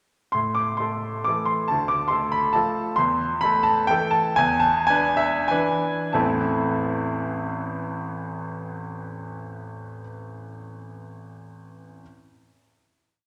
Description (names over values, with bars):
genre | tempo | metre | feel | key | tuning
classical, piano waltz | 88-145 BPM | 3/4 | rubato | A minor | A4 = 439 Hz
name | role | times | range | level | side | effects
clear grand piano | solo | 0.3-12.0 s | A1 to D6 | -24 LUFS | equal | none
room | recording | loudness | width
wet scoring stage reverb, RT60 1.9 s | none | -23 LUFS | mono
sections
0.3-6.2 A section; 6.2-9.9 final chord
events
slowing down 2.3-6.2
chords
0.3 Am; 1.7 Dm; 3.0 Am/E; 4.4 E7; 6.2 Am